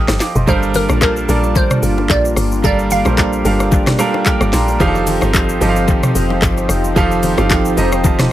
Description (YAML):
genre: amapiano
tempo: 111 BPM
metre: 4/4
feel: swing 55% on 16ths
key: G minor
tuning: A4 = 440 Hz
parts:
  - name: clear concert grand piano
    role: accompaniment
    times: 0.0-8.3 s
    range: F3 to F6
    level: -17 LUFS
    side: right 3 dB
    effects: analog delay
  - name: woody log drum bass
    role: bass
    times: 0.0-8.3 s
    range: F1 to Bb1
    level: -18 LUFS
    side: equal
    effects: none
  - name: afro-pop drum kit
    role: drums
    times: 0.1-8.3 s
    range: handclaps, hi-hat, kick drum, rim click, shaker, snare drum, toms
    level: -17 LUFS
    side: equal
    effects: analog delay
  - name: glassy wavetable pluck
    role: melody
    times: 0.5-4.0 s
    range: Bb4 to F5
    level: -20 LUFS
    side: right 1 dB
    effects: chorus, analog delay
  - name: warm analog pad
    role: sustained chords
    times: 0.5-8.3 s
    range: F3 to A5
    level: -21 LUFS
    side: left 2 dB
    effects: lush chorus
  - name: congas and bongos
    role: percussion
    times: 0.5-8.2 s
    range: none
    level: -25 LUFS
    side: left 5 dB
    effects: none
room: little or no reverb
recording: echo-heavy mix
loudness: -12 LUFS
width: side -13 dB against mid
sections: 0.0-8.3 A section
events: grand piano fill 3.7-4.8, 7.5-8.3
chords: 0.5 Gm9; 4.8 F7